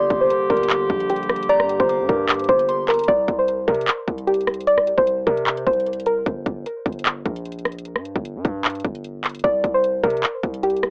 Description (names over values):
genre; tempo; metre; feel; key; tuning
hip hop, trap; 151 BPM; 4/4; half-time; unclear; A4 = 439 Hz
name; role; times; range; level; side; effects
soft round pluck; melody; 0.0-6.2, 9.4-10.9 s; G4 to D5; -22 LUFS; equal; chorus, low-pass filter, cassette tape, analog delay
soft synth bell; second line; 0.0-3.1 s; Bb5 to D6; -32 LUFS; equal; chorus, cassette tape, analog delay
warm woodwind section; sustained chords; 0.0-3.1 s; D3 to G4; -26 LUFS; equal; cassette tape
distorted 808-style bass; bass; 0.0-10.9 s; G1 to C3; -32 LUFS; equal; distortion
trap drum kit; drums; 0.1-10.9 s; handclaps, hi-hat, kick drum, rim click; -25 LUFS; equal; none
room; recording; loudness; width
moderate booth ambience, RT60 0.2 s; home recording on cassette, AM radio sound; -21 LUFS; mono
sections
0.0-3.1 A section; 3.1-10.9 B section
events
break 6.3-9.4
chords
0.0 Gm; 3.1 C5; 6.3 Gm; 9.4 C5